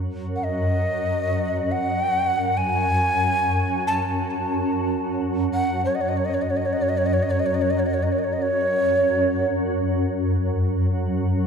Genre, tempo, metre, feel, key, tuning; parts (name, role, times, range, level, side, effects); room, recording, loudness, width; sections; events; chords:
world meditative, free-time meditation music; free time; F# kumoi; A4 = 440 Hz
shimmering ambient pad; drone; 0.0-11.5 s; F#2; -23 LUFS; equal; chorus, built-in reverb
breathy Native American-style cedar flute; melody; 0.4-9.5 s; C#5 to A5; -23 LUFS; equal; ping-pong delay
wet huge ambient reverb, RT60 4.7 s; dark, warm production; -20 LUFS; side -6 dB against mid
0.0-11.5 A section